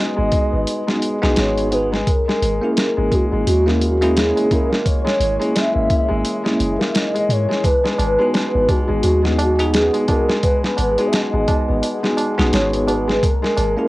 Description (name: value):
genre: trip hop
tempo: 86 BPM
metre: 4/4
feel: swing 59% on 16ths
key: G# minor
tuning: A4 = 440 Hz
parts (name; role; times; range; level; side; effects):
- pure breathy sine lead; melody; 0.0-13.9 s; F#4 to E5; -20 LUFS; equal; ensemble chorus, cassette tape, tape echo
- bell-like tine electric piano; accompaniment; 0.0-13.9 s; A#3 to G#4; -22 LUFS; equal; harmonic tremolo, cassette tape
- deep dark ambient pad; sustained chords; 0.2-13.9 s; E4 to A#5; -30 LUFS; left 3 dB; none
- felt-muted upright piano; arpeggios; 0.0-13.9 s; G#3 to B3; -24 LUFS; left 1 dB; cassette tape, tape echo
- soft 808-style bass; bass; 0.2-13.8 s; F#1 to G#2; -21 LUFS; equal; none
- boom bap sampler-style drum kit; drums; 0.3-13.8 s; hi-hat, kick drum, snare drum; -20 LUFS; equal; cassette tape
- tabla; percussion; 7.6-13.9 s; none; -29 LUFS; right 3 dB; none
room: light reverb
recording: home recording on cassette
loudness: -15 LUFS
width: side -18 dB against mid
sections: 0.0-13.9 A section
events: none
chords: 0.0 G#m7; 2.1 A#m7b5/G#; 7.6 G#m7; 13.2 A#m7b5/G#